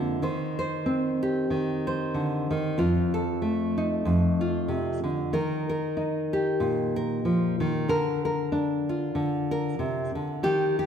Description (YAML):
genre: folk, solo fingerstyle acoustic guitar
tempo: 94 BPM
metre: 4/4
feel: swing 56% on 8ths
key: Bb major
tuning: A4 = 438 Hz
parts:
  - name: nylon-string guitar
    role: solo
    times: 0.0-10.9 s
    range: F2 to C5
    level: -24 LUFS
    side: equal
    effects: none
room: wet scoring stage reverb, RT60 1.7 s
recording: recorded in a church or concert hall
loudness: -24 LUFS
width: side -8 dB against mid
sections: 0.0-10.9 A section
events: none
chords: 0.2 Cm/Eb; 2.8 F7; 5.3 Eb; 7.9 Bbadd9/D